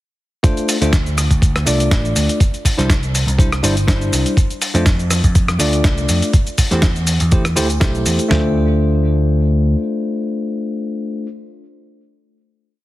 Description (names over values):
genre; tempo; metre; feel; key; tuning
nu-disco, nu disco; 122 BPM; 4/4; swing 54% on 16ths; D minor; A4 = 440 Hz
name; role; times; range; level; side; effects
bell-like tine electric piano; accompaniment; 0.4-11.3 s; G3 to D5; -20 LUFS; left 1 dB; sidechain pumping, digital delay
dusty soul sampler-style drum kit; drums; 0.4-8.4 s; kick drum, snare drum, toms; -14 LUFS; equal; small room ambience
dusty soul sampler-style drum kit; drums; 0.4-8.3 s; hi-hat, rim click, shaker, snare drum; -20 LUFS; equal; small room ambience
picked electric bass; bass; 0.8-9.7 s; G1 to F2; -17 LUFS; equal; none
room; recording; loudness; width
digital ambience; heavily compressed radio sound, multiband compression; -14 LUFS; side -16 dB against mid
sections
0.4-8.3 drop; 8.3-12.2 final chord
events
drop 0.4-8.3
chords
0.4 Dm7; 2.4 Cadd9; 4.4 F6; 6.3 Am7/E; 8.3 Dm7